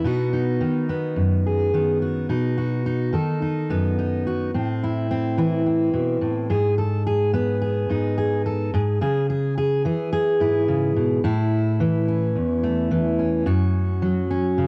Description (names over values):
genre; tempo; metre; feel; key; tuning
folk; 107 BPM; 4/4; straight; unclear; A4 = 439 Hz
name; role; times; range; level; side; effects
fingerpicked steel-string acoustic guitar; solo; 0.0-14.7 s; E2 to A4; -22 LUFS; equal; cassette tape
room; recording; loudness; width
moderate spring reverb, RT60 2.3 s; home recording on cassette; -22 LUFS; mono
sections
0.0-2.3 A section; 2.3-11.2 B section; 11.2-14.7 C section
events
none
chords
0.1 B; 4.5 Am; 6.5 G#m; 9.0 C#m; 11.2 A; 13.5 F#5